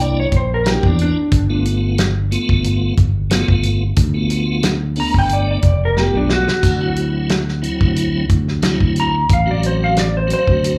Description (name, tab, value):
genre	straight-eighth soul blues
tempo	90 BPM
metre	4/4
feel	swing 53% on 16ths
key	unclear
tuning	A4 = 442 Hz
part	clean lap steel guitar	melody	0.0-10.8 s	D4 to Bb5	-22 LUFS	equal	plate reverb, slapback echo, analog delay
part	tonewheel organ	accompaniment	0.0-10.8 s	F#3 to F#4	-24 LUFS	equal	slow rotary speaker, overdrive, chorus vibrato, plate reverb, slapback echo
part	fingered electric bass	bass	0.0-10.8 s	F1 to E2	-20 LUFS	equal	none
part	warm soul drum kit	drums	0.3-10.8 s	hi-hat, kick drum, snare drum, splash cymbal	-20 LUFS	equal	none
room	light reverb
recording	live gig heard through the venue's PA, club reverb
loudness	-16 LUFS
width	mono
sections	0.0-10.8 A section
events	drum fill 6.0-6.6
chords	0.0 C9; 1.3 G9; 6.6 D9